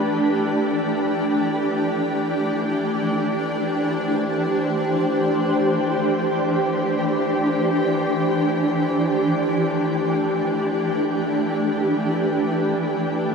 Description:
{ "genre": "ambient", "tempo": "free time", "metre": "none", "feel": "none", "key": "E minor", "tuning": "A4 = 438 Hz", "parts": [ { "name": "shimmering ambient pad", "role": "solo", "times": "0.0-13.3 s", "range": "E3 to C5", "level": "-19 LUFS", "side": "equal", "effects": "chorus, built-in reverb, ping-pong delay" } ], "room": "wet shimmer reverb, RT60 8.1 s", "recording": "none", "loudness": "-19 LUFS", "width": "side -5 dB against mid", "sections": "0.0-8.4 A section; 8.4-13.3 B section", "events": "none", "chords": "0.0 Em7; 1.2 Am/E; 8.4 Em7" }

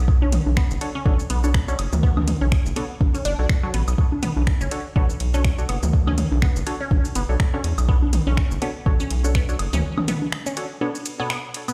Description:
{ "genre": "minimal techno", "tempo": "123 BPM", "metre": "4/4", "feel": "swing 57% on 16ths", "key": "B minor", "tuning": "A4 = 440 Hz", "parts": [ { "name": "rubbery square bass", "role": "bass", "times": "0.0-9.8 s", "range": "F#1 to E2", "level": "-24 LUFS", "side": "equal", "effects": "sidechain pumping" }, { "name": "electronic kick drum", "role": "drums", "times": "0.1-9.5 s", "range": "none", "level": "-22 LUFS", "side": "equal", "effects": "none" }, { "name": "resonant blip pluck", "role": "riff", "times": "0.2-11.7 s", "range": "F#3 to D4", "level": "-33 LUFS", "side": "equal", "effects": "phaser, cassette tape, sidechain pumping, digital delay" }, { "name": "electronic congas, toms and woodblock", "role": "percussion", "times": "0.2-11.7 s", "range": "none", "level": "-30 LUFS", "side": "equal", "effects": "delay" }, { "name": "booming analog drum machine", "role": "drums", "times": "0.3-11.7 s", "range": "finger snaps, hi-hat, ride cymbal, shaker", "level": "-34 LUFS", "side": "equal", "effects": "none" }, { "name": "wavetable chord stab", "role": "stabs", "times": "0.8-11.3 s", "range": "D4 to C#5", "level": "-34 LUFS", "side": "equal", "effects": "delay" } ], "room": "little or no reverb", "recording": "played on a big sound system in a bare room, stone room reverb", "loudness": "-22 LUFS", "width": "mono", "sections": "0.0-11.7 A section", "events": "break 9.8-11.7; band accent 11.3", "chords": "0.0 Bm7" }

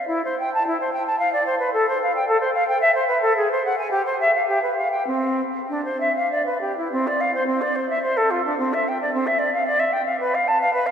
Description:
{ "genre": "classical, baroque-style fantasia for unaccompanied flute", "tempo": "96-114 BPM", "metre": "3/4", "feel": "rubato", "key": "C major", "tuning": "A4 = 443 Hz", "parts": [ { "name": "silver concert flute", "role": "solo", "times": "0.0-10.9 s", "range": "C4 to A5", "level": "-19 LUFS", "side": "equal", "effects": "none" } ], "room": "wet cathedral reverb, RT60 4.6 s", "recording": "heard from further back in the room", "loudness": "-19 LUFS", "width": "side -8 dB against mid", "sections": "0.0-6.9 A section; 6.9-10.9 B section", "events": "none", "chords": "none" }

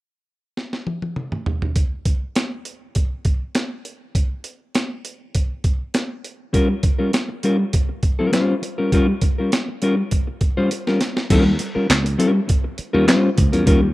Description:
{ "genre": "funk", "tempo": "101 BPM", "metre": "4/4", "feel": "straight", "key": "unclear", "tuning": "A4 = 440 Hz", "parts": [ { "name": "breakbeat sampler-style drum kit", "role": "drums", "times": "0.6-13.8 s", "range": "crash cymbal, handclaps, hi-hat, kick drum, snare drum, toms", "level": "-19 LUFS", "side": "equal", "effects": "none" }, { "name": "mellow electric guitar", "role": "accompaniment", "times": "6.5-13.9 s", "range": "G3 to C5", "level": "-19 LUFS", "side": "left 1 dB", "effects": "spring reverb" }, { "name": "slap bass", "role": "bass", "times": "11.3-13.9 s", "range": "Db2 to Fb2", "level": "-20 LUFS", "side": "right 1 dB", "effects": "none" } ], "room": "little or no reverb", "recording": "rough home demo mix", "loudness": "-18 LUFS", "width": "side -18 dB against mid", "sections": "0.0-1.8 A section; 1.8-11.3 B section; 11.3-13.9 C section", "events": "drum fill 0.6-1.8, 10.7-11.3", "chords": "0.0 N.C.; 1.8 Gm7b5; 11.3 Eb9" }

